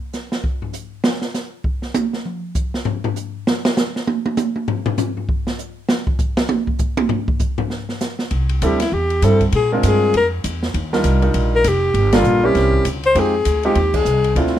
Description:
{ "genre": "jazz, small-group swing and bop", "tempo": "198 BPM", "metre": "4/4", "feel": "swing 60% on 8ths", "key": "unclear", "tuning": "A4 = 444 Hz", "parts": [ { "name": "open jazz drum kit", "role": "drums", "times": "0.1-14.6 s", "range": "crash cymbal, hi-hat, kick drum, ride cymbal, snare drum, toms", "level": "-21 LUFS", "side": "right 1 dB", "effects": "none" }, { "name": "upright bass", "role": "bass", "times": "8.3-14.6 s", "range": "F1 to Bb2", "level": "-18 LUFS", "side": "equal", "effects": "none" }, { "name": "clear grand piano", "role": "accompaniment", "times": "8.6-14.6 s", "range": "G3 to C5", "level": "-20 LUFS", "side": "right 2 dB", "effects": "none" }, { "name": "clear alto saxophone", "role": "melody", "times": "8.7-14.4 s", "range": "E4 to C5", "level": "-17 LUFS", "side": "left 2 dB", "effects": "none" } ], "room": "light reverb", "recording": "none", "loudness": "-16 LUFS", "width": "side -11 dB against mid", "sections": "0.0-8.3 A section; 8.3-14.6 B section", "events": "drum solo 0.0-8.3; band accent 12.1, 13.9", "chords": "0.0 N.C.; 8.3 C6; 9.5 Bb7; 10.7 Ebmaj9; 11.9 Gm9; 12.6 C7b9; 13.2 Fm7" }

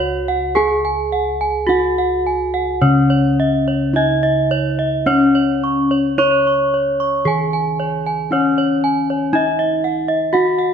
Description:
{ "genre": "Javanese gamelan", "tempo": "53-61 BPM", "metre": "4/4", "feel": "straight", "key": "unclear", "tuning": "A4 = 440 Hz", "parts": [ { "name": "gamelan-type bronze metallophone", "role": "melody", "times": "0.0-10.7 s", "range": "C#4 to C#5", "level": "-17 LUFS", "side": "left 2 dB", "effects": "slapback echo" }, { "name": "gamelan-type bronze metallophone", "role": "arpeggios", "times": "0.0-10.7 s", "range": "C#5 to C#6", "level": "-20 LUFS", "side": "right 3 dB", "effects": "none" }, { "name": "gamelan-type bossed gongs", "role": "bass", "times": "0.0-10.4 s", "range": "C#2 to G#4+20c", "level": "-22 LUFS", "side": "equal", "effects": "none" } ], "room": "wet recital hall reverb, RT60 1.6 s", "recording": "none", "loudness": "-14 LUFS", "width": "side -7 dB against mid", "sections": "0.0-10.7 A section", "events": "none", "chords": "none" }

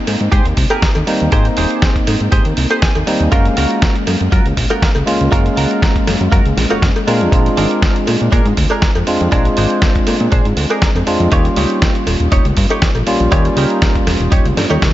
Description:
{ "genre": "nu-disco, nu disco", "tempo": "120 BPM", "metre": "4/4", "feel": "swing 53% on 16ths", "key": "Ab major", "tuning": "A4 = 440 Hz", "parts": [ { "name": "tine electric piano", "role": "accompaniment", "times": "0.0-14.9 s", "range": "G3 to F5", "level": "-18 LUFS", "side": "equal", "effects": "vintage 12-bit sampler grit, analog delay" }, { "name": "fat analog bass", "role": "bass", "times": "0.1-14.9 s", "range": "Eb1 to Bb2", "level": "-17 LUFS", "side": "equal", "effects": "none" }, { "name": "dusty soul sampler-style drum kit", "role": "drums", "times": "0.1-14.9 s", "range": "hi-hat, snare drum, toms", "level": "-21 LUFS", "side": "right 1 dB", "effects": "none" }, { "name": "cowbell", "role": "percussion", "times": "0.1-14.8 s", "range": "none", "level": "-25 LUFS", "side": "left 2 dB", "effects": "none" }, { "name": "direct-recorded clean electric guitar", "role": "riff", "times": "0.3-14.9 s", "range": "D4 to Ab5", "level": "-22 LUFS", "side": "right 3 dB", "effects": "analog chorus, low-pass filter, analog delay" }, { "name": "electronic kick drum", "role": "drums", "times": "0.3-14.9 s", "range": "none", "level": "-14 LUFS", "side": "equal", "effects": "none" } ], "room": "light reverb", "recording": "nothing above 7.6 kHz", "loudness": "-11 LUFS", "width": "side -14 dB against mid", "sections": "0.0-14.9 A section", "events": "clean electric guitar fill 2.6-3.3", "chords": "0.0 Abmaj7; 3.3 Gbmaj7; 7.1 Bb7; 11.3 Eb7" }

